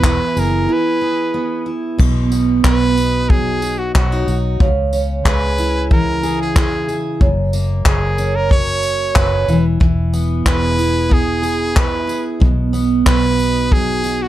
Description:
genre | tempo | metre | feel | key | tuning
acoustic pop | 92 BPM | 4/4 | straight | B major | A4 = 440 Hz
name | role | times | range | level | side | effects
brilliant trumpet | melody | 0.0-14.3 s | F#4 to C#5 | -20 LUFS | right 1 dB | none
picked steel-string acoustic guitar | accompaniment | 0.0-14.3 s | F#2 to A#4 | -19 LUFS | right 2 dB | none
vintage muted fingered electric bass | bass | 0.0-14.3 s | E1 to C#2 | -20 LUFS | equal | none
soft brush drum kit | drums | 0.0-14.2 s | crash cymbal, handclaps, kick drum, tambourine | -16 LUFS | equal | none
room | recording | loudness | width
light reverb | dark, warm production | -14 LUFS | side -13 dB against mid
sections
0.0-2.0 A section; 2.0-14.3 B section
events
break 0.7-2.0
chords
0.0 E; 2.0 B; 4.6 C#m; 7.2 F#; 9.5 E; 12.4 B

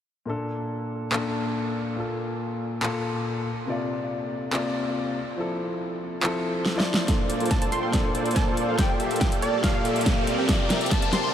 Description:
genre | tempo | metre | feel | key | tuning
future bass | 141 BPM | 4/4 | half-time | unclear | A4 = 440 Hz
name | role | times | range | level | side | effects
warm concert grand piano | accompaniment | 0.3-11.3 s | Bb2 to D5 | -28 LUFS | left 2 dB | sidechain pumping, analog delay
dubstep drum kit | drums | 1.1-11.2 s | handclaps, hi-hat, snare drum | -29 LUFS | equal | none
supersaw chords | riff | 7.1-11.3 s | Bb3 to A5 | -27 LUFS | right 1 dB | sidechain pumping, low-pass filter, analog delay
electronic kick drum | drums | 7.1-11.0 s | none | -25 LUFS | equal | none
riser | sound effects | 9.0-11.3 s | none | -34 LUFS | left 2 dB | none
glassy wavetable pluck | melody | 7.5-11.3 s | D5 to C6 | -30 LUFS | right 1 dB | chorus, sidechain pumping, analog delay
room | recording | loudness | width
wet huge ambient reverb, RT60 7.4 s | dreamy mix soaked in reverb | -23 LUFS | side -9 dB against mid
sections
0.3-7.1 A section; 7.1-11.3 B section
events
drum fill 6.7-7.1, 7.1-11.3; build-up 7.1-11.3; filter sweep on supersaw synth 7.1-11.3; riser 9.0-11.3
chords
0.3 Bbmaj7; 2.0 Fadd11/Bb; 3.5 C9sus4; 5.2 Fmaj7; 7.1 Bbmaj7; 8.8 Gm7/Bb; 10.3 C9sus4

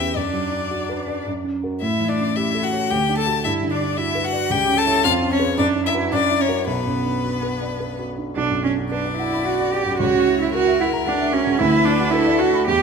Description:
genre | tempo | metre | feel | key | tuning
quick classical-period movement for piano trio | 110 BPM | 3/4 | straight | B minor | A4 = 442 Hz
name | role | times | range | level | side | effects
clear violin | melody | 0.0-12.8 s | G4 to A5 | -24 LUFS | left 8 dB | none
dark baby grand piano | accompaniment | 0.0-12.8 s | B1 to B5 | -22 LUFS | right 1 dB | none
rich cello | second line | 0.2-12.8 s | B3 to A4 | -22 LUFS | right 4 dB | none
room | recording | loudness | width
moderate scoring stage reverb, RT60 1.6 s | none | -18 LUFS | side -5 dB against mid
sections
0.0-8.4 A section; 8.4-12.8 B section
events
none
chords
0.2 Bm/F#; 1.3 F#; 1.8 A7; 2.9 D; 3.4 Gmaj7; 4.5 C#dim; 5.0 C#7/E#; 5.6 Bm/F#; 6.1 F#7; 6.7 Bm; 10.0 F#7/C#; 11.6 Bm/D

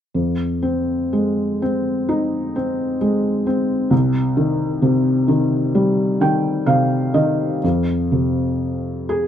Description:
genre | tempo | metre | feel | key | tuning
classical, lyrical solo piano | 60-66 BPM | 4/4 | rubato | unclear | A4 = 438 Hz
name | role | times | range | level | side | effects
felt-muted upright piano | solo | 0.1-9.3 s | C2 to G5 | -17 LUFS | equal | none
room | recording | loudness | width
light reverb | dark, warm production | -17 LUFS | side -9 dB against mid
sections
0.1-7.6 A section; 7.6-9.3 B section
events
felt piano fill 5.8-7.6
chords
0.1 Fm7; 3.9 Cm; 7.6 F5

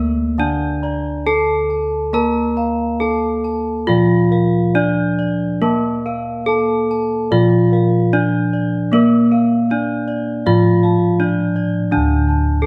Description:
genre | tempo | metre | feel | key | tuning
Javanese gamelan | 69-84 BPM | 4/4 | straight | unclear | A4 = 440 Hz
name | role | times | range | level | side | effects
gamelan-type bronze metallophone | melody | 0.0-12.7 s | Bb3 to Bb4 | -20 LUFS | equal | none
gamelan-type bronze metallophone | accompaniment | 0.0-12.7 s | D3 to Bb3 | -23 LUFS | equal | none
gamelan-type bronze metallophone | arpeggios | 0.0-11.9 s | Bb4 to Bb5 | -31 LUFS | equal | none
gamelan-type bossed gongs | bass | 0.0-12.7 s | D2 to Bb4 | -24 LUFS | equal | none
gamelan-type bossed gongs | arpeggios | 0.4-12.7 s | Bb4 to Bb5 | -30 LUFS | equal | none
room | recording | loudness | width
moderate stone room reverb, RT60 1.3 s | band playing live in one room | -17 LUFS | mono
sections
0.0-11.9 A section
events
none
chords
none

